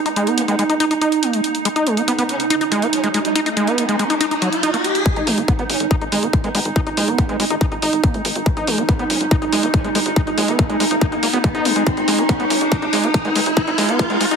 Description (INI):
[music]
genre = psychedelic trance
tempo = 141 BPM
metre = 4/4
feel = straight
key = G# minor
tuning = A4 = 440 Hz
[part]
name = evolving wavetable pad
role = sustained chords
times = 0.0-14.4 s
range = D#4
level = -22 LUFS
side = right 3 dB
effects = chorus, built-in reverb, sidechain pumping
[part]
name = overdriven acid bass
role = riff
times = 0.1-14.4 s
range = F#3 to D#4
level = -21 LUFS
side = equal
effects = distortion, auto-pan, sidechain pumping, tape echo
[part]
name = electronic hi-hat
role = drums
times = 0.1-14.4 s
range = none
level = -24 LUFS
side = equal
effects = none
[part]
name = formant-sweep wobble bass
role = second line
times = 0.4-14.2 s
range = B3 to D#4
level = -30 LUFS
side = right 2 dB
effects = ensemble chorus, sidechain pumping, high-pass filter, digital delay
[part]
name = riser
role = sound effects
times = 2.9-14.4 s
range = none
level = -26 LUFS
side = left 1 dB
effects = none
[part]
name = electronic kick drum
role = drums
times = 5.1-14.1 s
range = none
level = -18 LUFS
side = left 1 dB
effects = distortion
[part]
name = tight sequencer bass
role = bass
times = 5.2-14.4 s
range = G#1 to A#1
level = -27 LUFS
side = left 1 dB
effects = high-pass filter
[sound]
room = moderate plate reverb, RT60 1.9 s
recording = heavily compressed radio sound, high-pass filter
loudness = -16 LUFS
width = side -6 dB against mid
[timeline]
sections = 0.0-5.1 A section; 5.1-14.4 B section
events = riser 2.9-5.1, 5.1-14.4; build-up 5.1-14.4; filter sweep on acid bass 5.1-14.4; drum fill 11.9-14.4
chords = 0.0 G#5